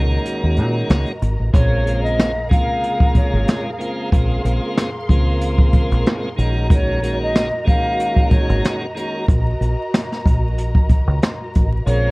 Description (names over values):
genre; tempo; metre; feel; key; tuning
hip hop, boom-bap hip-hop; 93 BPM; 4/4; swing 55% on 16ths; unclear; A4 = 443 Hz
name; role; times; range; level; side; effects
tonewheel organ; accompaniment; 0.0-12.1 s; C3 to Gb4; -24 LUFS; equal; overdrive, slow rotary speaker, cassette tape, high-pass filter, low-pass filter
warm symphonic string section; sustained chords; 0.0-12.1 s; Gb4 to C6; -28 LUFS; equal; high-pass filter, low-pass filter
deep dub fingered electric bass; bass; 0.0-12.1 s; Ab1 to Bb2; -19 LUFS; equal; none
jazz brush drum kit; drums; 0.3-12.0 s; hi-hat, kick drum, rim click, snare drum; -17 LUFS; equal; none
breathy concert flute; melody; 1.5-12.1 s; Db5 to F5; -22 LUFS; equal; high-pass filter, low-pass filter, slapback echo
room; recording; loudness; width
little or no reverb; worn, warbling old tape, cassette tape, vinyl crackle, warbly pitch drift; -15 LUFS; side -26 dB against mid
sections
0.0-1.5 A section; 1.5-12.1 A section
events
kick muted 0.2-1.5, 11.9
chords
0.0 Gb6; 1.5 Bbm7; 6.4 Gb6